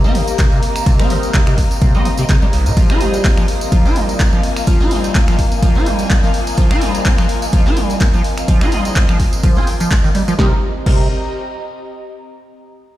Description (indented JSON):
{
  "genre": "acid house",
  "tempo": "126 BPM",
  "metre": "4/4",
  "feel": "swing 55% on 16ths",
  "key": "C minor",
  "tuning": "A4 = 439 Hz",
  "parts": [
    { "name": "dark studio string section", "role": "sustained chords", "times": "0.0-10.4 s", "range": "Bb3", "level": "-25 LUFS", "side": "left 5 dB", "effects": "vintage 12-bit sampler grit, sidechain pumping" },
    { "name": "liquid acid bass", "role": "riff", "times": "0.0-11.1 s", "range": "C2 to F4", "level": "-20 LUFS", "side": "equal", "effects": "tube saturation, analog chorus, cassette tape, ping-pong delay" },
    { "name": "band-passed chord stab", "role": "stabs", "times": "0.0-11.0 s", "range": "G3 to G5", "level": "-26 LUFS", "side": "right 2 dB", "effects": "phaser, ensemble chorus, ping-pong delay" },
    { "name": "tambourine", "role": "percussion", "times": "0.0-10.4 s", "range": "none", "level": "-31 LUFS", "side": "right 4 dB", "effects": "none" },
    { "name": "airy breathy pad", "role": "texture", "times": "0.0-12.3 s", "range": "C4 to Bb5", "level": "-26 LUFS", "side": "equal", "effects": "chorus, phaser, sidechain pumping" },
    { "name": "punchy analog drum machine", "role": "drums", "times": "0.1-11.0 s", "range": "crash cymbal, finger snaps, handclaps, hi-hat, ride cymbal, snare drum", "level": "-24 LUFS", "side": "equal", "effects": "overdrive, studio reverb" },
    { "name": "electronic kick drum", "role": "drums", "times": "0.4-11.0 s", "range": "none", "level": "-14 LUFS", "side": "equal", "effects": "overdrive, studio reverb" },
    { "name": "vibraphone with medium hard mallets", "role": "melody", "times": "3.0-5.3 s", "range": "F4 to G4", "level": "-25 LUFS", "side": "right 1 dB", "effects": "auto-pan, digital delay" }
  ],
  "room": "light reverb",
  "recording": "played on a big sound system in a bare room, stone room reverb",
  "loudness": "-12 LUFS",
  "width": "side -14 dB against mid",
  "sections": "0.0-10.4 A section; 10.4-12.3 B section",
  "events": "drop 0.0-10.4",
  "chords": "0.0 Cm7; 2.8 Fm7; 10.4 Cm7"
}